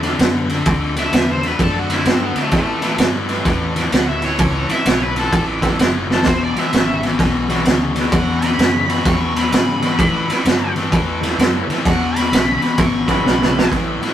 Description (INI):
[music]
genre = electric blues shuffle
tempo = 129 BPM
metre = 4/4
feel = swing 64% on 8ths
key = A mixolydian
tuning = A4 = 438 Hz
[part]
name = bright tonewheel organ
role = accompaniment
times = 0.0-14.1 s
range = F#3 to F#4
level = -26 LUFS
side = right 3 dB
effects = slow rotary speaker, overdrive, chorus vibrato
[part]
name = overdriven electric guitar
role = riff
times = 0.0-14.1 s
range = E2 to B3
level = -20 LUFS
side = left 4 dB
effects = none
[part]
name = vintage muted fingered electric bass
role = bass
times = 0.0-14.0 s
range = E1 to A2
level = -26 LUFS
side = equal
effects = none
[part]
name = raw garage drum kit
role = drums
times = 0.0-14.1 s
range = kick drum, ride cymbal, snare drum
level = -17 LUFS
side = right 1 dB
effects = none
[part]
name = smooth overdriven lead guitar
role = melody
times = 1.0-13.7 s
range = A3 to C#6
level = -22 LUFS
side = equal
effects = none
[sound]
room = light reverb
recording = rough rehearsal-room recording, tube saturation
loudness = -14 LUFS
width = side -11 dB against mid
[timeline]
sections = 0.0-13.7 A section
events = lead electric guitar solo 0.0-13.7; drum fill 6.0, 13.2-13.7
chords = 0.0 D7; 2.5 A7; 6.3 E7; 10.0 A7; 11.8 E7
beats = 0.20 | 0.67 1.13 1.60 2.07 | 2.53 3.00 3.46 3.93 | 4.40 4.86 5.33 5.79 | 6.26 6.73 7.19 7.66 | 8.12 8.59 9.06 9.52 | 9.99 10.45 10.92 11.38 | 11.85 12.32 12.78 13.25 | 13.72